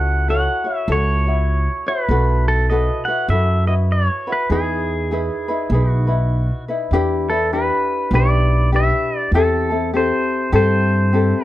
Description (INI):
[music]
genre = Hawaiian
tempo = 100 BPM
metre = 4/4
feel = swing 60% on 8ths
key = E major, E minor from 6.9 s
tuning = A4 = 438 Hz
[part]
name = pedal steel guitar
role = melody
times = 0.0-11.4 s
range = G#4 to F#5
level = -21 LUFS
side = right 1 dB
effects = none
[part]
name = ukulele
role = accompaniment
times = 0.0-11.4 s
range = C4 to C#5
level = -21 LUFS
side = left 2 dB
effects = none
[part]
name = upright bass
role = bass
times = 0.0-11.3 s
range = B1 to G2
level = -18 LUFS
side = equal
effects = none
[sound]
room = small room reverb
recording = dry, close 1970s-style studio recording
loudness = -16 LUFS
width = side -14 dB against mid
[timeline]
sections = 0.0-6.9 A section; 6.9-11.4 B section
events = none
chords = 0.0 F#m7/C#; 2.1 B7sus4; 4.5 Emaj7; 6.9 Em7; 9.3 C6/E